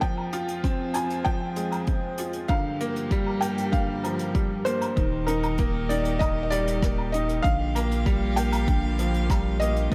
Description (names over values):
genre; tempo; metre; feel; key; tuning
piano and strings electronica; 97 BPM; 4/4; straight; unclear; A4 = 440 Hz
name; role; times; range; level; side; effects
felt-muted upright piano; melody; 0.0-9.9 s; Bb4 to Ab5; -33 LUFS; equal; digital delay
warm string quartet; sustained chords; 0.0-9.9 s; F2 to F5; -37 LUFS; equal; sidechain pumping
warm upright piano; riff; 0.0-9.9 s; D3 to F4; -31 LUFS; equal; digital delay
electronic kick drum; drums; 0.0-9.9 s; none; -28 LUFS; equal; none
jazz brush drum kit; drums; 0.0-9.9 s; hi-hat, rim click, woodblock; -38 LUFS; equal; none
round analog bass; bass; 5.0-9.9 s; Eb1 to Bb1; -30 LUFS; equal; sidechain pumping
room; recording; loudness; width
light reverb, small room reverb; none; -25 LUFS; mono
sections
0.0-5.0 A section; 5.0-9.9 B section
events
build-up 0.0-5.0; drop 5.0-9.9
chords
0.0 Fm; 2.5 Gm7; 5.0 Eb; 7.4 Bb6